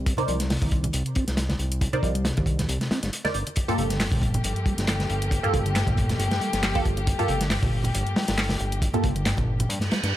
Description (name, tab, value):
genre	breakbeat, breaks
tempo	137 BPM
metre	4/4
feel	swing 54% on 16ths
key	unclear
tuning	A4 = 440 Hz
part	fat analog bass	bass	0.0-10.1 s	G1 to G2	-28 LUFS	equal	none
part	crunchy breakbeat drum kit	drums	0.1-10.1 s	hi-hat, kick drum, snare drum	-26 LUFS	equal	none
part	punchy analog drum machine	drums	0.1-10.1 s	handclaps, hi-hat	-32 LUFS	equal	overdrive
part	mellow tonewheel organ	riff	0.2-10.0 s	G2 to C4	-28 LUFS	equal	fast rotary speaker
part	filtered dub chord stab	stabs	0.2-9.1 s	Bb3 to D5	-29 LUFS	right 2 dB	phaser, analog chorus, dub echo
part	congas	percussion	0.2-9.9 s	none	-35 LUFS	right 1 dB	none
part	dark chamber string section	sustained chords	3.6-10.1 s	F3 to G4	-31 LUFS	left 3 dB	sidechain pumping
part	reverse cymbal	sound effects	9.8-10.2 s	none	-29 LUFS	right 5 dB	none
room	small room reverb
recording	none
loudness	-22 LUFS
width	side -13 dB against mid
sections	0.0-10.2 A section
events	reverse cymbal 9.8-10.2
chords	0.0 Cm; 3.3 Gm9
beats	| 0.06 0.50 0.94 1.38 | 1.81 2.25 2.69 3.13 | 3.57 4.00 4.44 4.88 | 5.32 5.76 6.19 6.63 | 7.07 7.51 7.95 8.38 | 8.82 9.26 9.70 10.14